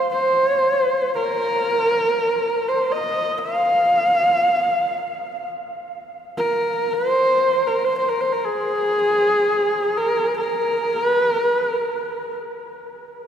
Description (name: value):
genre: mongolian traditional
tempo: free time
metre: none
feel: none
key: unclear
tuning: A4 = 441 Hz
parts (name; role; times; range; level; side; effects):
- warm horsehead fiddle; solo; 0.0-12.4 s; Ab4 to F5; -18 LUFS; equal; none
room: wet cathedral reverb, RT60 6.0 s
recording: recorded in a church or concert hall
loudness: -18 LUFS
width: side -8 dB against mid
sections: 0.0-13.3 A section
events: none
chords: none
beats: free time